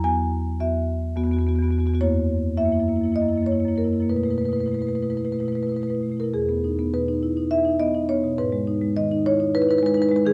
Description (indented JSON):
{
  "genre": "classical, contemporary piece for solo marimba",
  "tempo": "184-215 BPM (eighths)",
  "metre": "7/8",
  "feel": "rubato",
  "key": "E major",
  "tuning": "A4 = 439 Hz",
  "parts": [
    { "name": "marimba with medium mallets", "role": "solo", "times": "0.0-10.3 s", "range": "E2 to G#5", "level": "-23 LUFS", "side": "equal", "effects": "none" }
  ],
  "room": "moderate recital hall reverb, RT60 1.5 s",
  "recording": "close, detailed microphones",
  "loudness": "-23 LUFS",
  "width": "mono",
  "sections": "0.0-6.3 A section; 6.3-10.3 B section",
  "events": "none",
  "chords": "0.0 Esus2; 2.0 F#7; 4.1 B7sus4; 6.3 Emaj7; 8.4 G#m",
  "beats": "| 0.04 0.32 0.60 0.88 1.16 1.45 1.73 | 2.01 2.29 2.57 2.86 3.15 3.46 3.78 | 4.10 4.42 4.75 5.07 5.39 5.71 6.03 | 6.34 6.64 6.93 7.22 7.51 7.80 8.09 | 8.39 8.68 8.97 9.26 9.54 9.83 10.12"
}